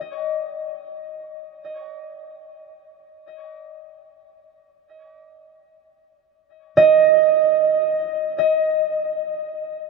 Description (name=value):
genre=ambient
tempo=free time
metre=none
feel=none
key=unclear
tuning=A4 = 440 Hz
part: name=concert harp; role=arpeggios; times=0.0-9.2 s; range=Eb5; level=-18 LUFS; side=right 4 dB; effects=ping-pong delay
room=wet huge ambient reverb, RT60 7.4 s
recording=none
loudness=-16 LUFS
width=side -3 dB against mid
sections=0.0-9.9 A section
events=fade-in on harp 0.0-9.9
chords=none